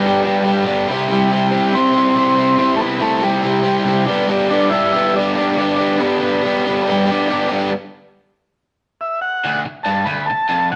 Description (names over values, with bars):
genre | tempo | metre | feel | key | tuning
rock | 140 BPM | 4/4 | straight | unclear | A4 = 440 Hz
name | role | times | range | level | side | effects
combo organ | melody | 0.0-10.8 s | G3 to B5 | -19 LUFS | equal | none
overdriven electric guitar | riff | 0.0-10.8 s | D2 to C5 | -19 LUFS | equal | none
room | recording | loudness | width
moderate stone room reverb, RT60 1.0 s | rough rehearsal-room recording | -17 LUFS | mono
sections
0.0-7.7 A section; 7.7-9.4 B section; 9.4-10.8 C section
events
none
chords
0.0 G; 0.9 C; 4.1 G; 7.7 N.C.; 9.4 D